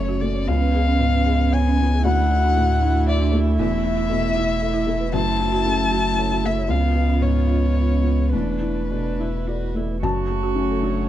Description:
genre	neoclassical piano and strings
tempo	103-119 BPM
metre	3/4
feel	rubato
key	F# minor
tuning	A4 = 440 Hz
part	dark violin	melody	0.0-11.1 s	B4 to A5	-25 LUFS	left 4 dB	none
part	warm cello	second line	0.0-11.1 s	A3 to F#4	-26 LUFS	right 7 dB	none
part	felt-muted upright piano	accompaniment	0.0-11.1 s	C#2 to A5	-26 LUFS	left 4 dB	none
part	warm viola	accompaniment	0.0-11.1 s	A3 to F#4	-30 LUFS	right 5 dB	none
part	folk marimba with medium mallets	arpeggios	0.0-11.1 s	C#4 to F#5	-30 LUFS	right 7 dB	slapback echo
part	punchy sub bass	bass	0.0-11.1 s	E1 to D2	-22 LUFS	equal	none
room	light reverb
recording	dark, warm production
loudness	-18 LUFS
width	side -12 dB against mid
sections	0.0-10.0 A section; 10.0-11.1 B section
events	none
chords	0.5 C#7; 2.1 Dadd9; 3.6 Esus4; 5.1 F#m7; 6.7 C#7; 8.3 E7sus4; 10.0 F#m

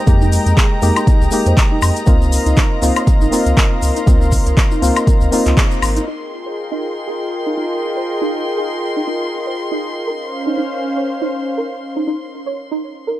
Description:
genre	deep house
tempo	120 BPM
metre	4/4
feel	swing 56% on 16ths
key	F minor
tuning	A4 = 440 Hz
part	warm analog pad	sustained chords	0.0-13.0 s	Ab3 to C6	-23 LUFS	left 1 dB	chorus, sidechain pumping
part	percussive organ stab	stabs	0.0-6.1 s	Ab3 to G4	-20 LUFS	left 1 dB	chorus, sidechain pumping, analog delay
part	warm chamber violin section	texture	0.0-13.1 s	Bb5 to C6	-29 LUFS	left 1 dB	none
part	round analog bass	bass	0.1-6.0 s	Ab1 to F2	-16 LUFS	equal	sidechain pumping
part	deep house drum kit	drums	0.1-6.1 s	handclaps, hi-hat, woodblock	-21 LUFS	left 2 dB	none
part	electronic kick drum	drums	0.1-5.7 s	none	-13 LUFS	equal	none
part	tube shaker	percussion	0.1-6.1 s	none	-31 LUFS	left 5 dB	none
part	soft round pluck	arpeggios	0.2-13.2 s	Eb4 to Db5	-24 LUFS	right 2 dB	ensemble chorus, sidechain pumping, analog delay
room	little or no reverb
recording	dry, gritty hardware recording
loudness	-14 LUFS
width	side -14 dB against mid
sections	0.0-6.1 A section; 6.1-13.2 B section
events	band accent 5.6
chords	0.0 Fm11; 2.1 Dbmaj13; 6.1 Fm11; 10.1 Dbmaj13

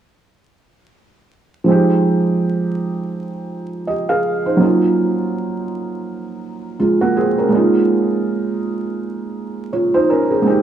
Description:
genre	hip hop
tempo	82 BPM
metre	4/4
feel	swing 59% on 16ths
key	unclear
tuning	A4 = 441 Hz
part	felt-muted upright piano	accompaniment	1.6-10.6 s	F3 to F5	-15 LUFS	right 2 dB	cassette tape
room	moderate plate reverb, RT60 3.0 s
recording	vinyl crackle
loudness	-15 LUFS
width	side -10 dB against mid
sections	1.7-10.6 A section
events	none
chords	1.7 Fm7; 4.6 Ebm7; 7.5 Db6

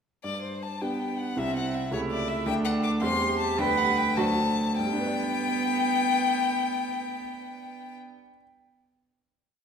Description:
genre	quick classical-period movement for piano trio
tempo	96-110 BPM (dotted quarters)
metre	6/8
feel	rubato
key	G major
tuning	A4 = 443 Hz
part	warm violin	melody	0.2-7.9 s	C5 to D6	-29 LUFS	left 6 dB	none
part	clear concert grand piano	accompaniment	0.2-8.4 s	C2 to D5	-29 LUFS	right 1 dB	none
part	rich cello	second line	0.8-8.0 s	B3 to B4	-30 LUFS	right 6 dB	none
room	wet recital hall reverb, RT60 1.6 s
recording	recorded in a church or concert hall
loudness	-24 LUFS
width	side -7 dB against mid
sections	0.2-4.8 A section; 4.8-7.2 final chord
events	slowing down 1.9-4.8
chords	0.2 G; 1.4 C; 1.9 A7/C#; 2.5 D5; 3.0 C/E; 3.6 G/D; 4.2 D7; 4.8 G

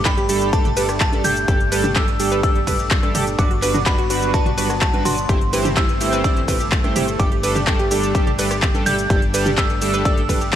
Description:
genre	progressive house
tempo	126 BPM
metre	4/4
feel	straight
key	G major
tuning	A4 = 441 Hz
part	glassy synth bell	melody	0.0-10.6 s	A5 to G6	-25 LUFS	equal	chorus, tremolo, vintage 12-bit sampler grit, sidechain pumping, digital delay
part	lush unison pad	sustained chords	0.0-10.6 s	E3 to D4	-28 LUFS	equal	chorus, sidechain pumping
part	tight sequencer bass	bass	0.0-10.6 s	G1	-26 LUFS	left 1 dB	sidechain pumping
part	analog pluck	arpeggios	0.1-10.5 s	F#4 to G5	-26 LUFS	right 1 dB	chorus, sidechain pumping, digital delay
part	chorused polysynth	stabs	0.1-10.4 s	G2 to C5	-23 LUFS	right 3 dB	sidechain pumping, digital delay
part	big-room dance drum kit	drums	0.1-10.6 s	handclaps, hi-hat, ride cymbal, rim click, shaker	-24 LUFS	left 1 dB	sidechain pumping on hats, sidechain pumping on perc, sidechain pumping on cymbals
part	electronic kick drum	drums	0.1-10.6 s	none	-19 LUFS	left 1 dB	none
part	electronic congas and toms	percussion	0.5-10.4 s	none	-27 LUFS	right 2 dB	sidechain pumping on toms, sidechain pumping on perc
room	light reverb, digital ambience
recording	none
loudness	-16 LUFS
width	side -10 dB against mid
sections	0.0-10.6 A section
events	none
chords	0.0 Gsus2; 3.4 Bm/G; 5.3 C6/G; 7.2 Gsus2

